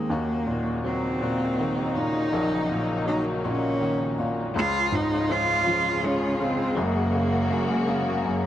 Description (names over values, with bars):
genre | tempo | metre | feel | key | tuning
six-eight pop ballad | 54 BPM (dotted quarters) | 6/8 | straight | Db major | A4 = 440 Hz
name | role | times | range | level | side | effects
warm cello | melody | 0.0-8.3 s | Bb3 to F4 | -26 LUFS | right 2 dB | none
clear baby grand piano | accompaniment | 0.0-8.5 s | Gb1 to Ab3 | -28 LUFS | right 1 dB | none
direct-recorded clean electric guitar | arpeggios | 0.0-8.5 s | Db3 to Ab4 | -33 LUFS | left 9 dB | wide subtle chorus
clear studio string section | sustained chords | 0.1-8.5 s | Db3 to Gb4 | -30 LUFS | left 2 dB | none
room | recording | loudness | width
light reverb | dry, close 1970s-style studio recording | -22 LUFS | side -11 dB against mid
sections
0.0-4.6 A section; 4.6-8.5 B section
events
none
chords
0.1 Ebm7; 4.6 Db; 6.8 Gbadd9